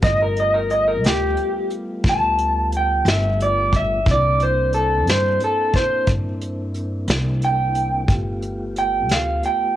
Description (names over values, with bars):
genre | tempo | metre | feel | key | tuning
slow blues | 60 BPM (dotted quarters) | 12/8 | straight | unclear | A4 = 436 Hz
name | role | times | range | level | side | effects
electric guitar through a small old amp | melody | 0.0-9.8 s | G4 to A5 | -19 LUFS | equal | cassette tape
mellow tonewheel organ | sustained chords | 0.0-9.8 s | G3 to G4 | -30 LUFS | left 1 dB | slow rotary speaker, cassette tape
upright bass | bass | 0.0-9.4 s | G1 to G2 | -23 LUFS | equal | none
vintage brush drum kit | drums | 0.0-9.6 s | hi-hat, kick drum, snare drum | -21 LUFS | equal | cassette tape
room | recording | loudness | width
light reverb, studio ambience | home recording on cassette | -17 LUFS | side -12 dB against mid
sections
0.0-9.8 A section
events
clean electric guitar solo 0.0-9.8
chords
0.0 G9; 4.1 C9; 8.1 G9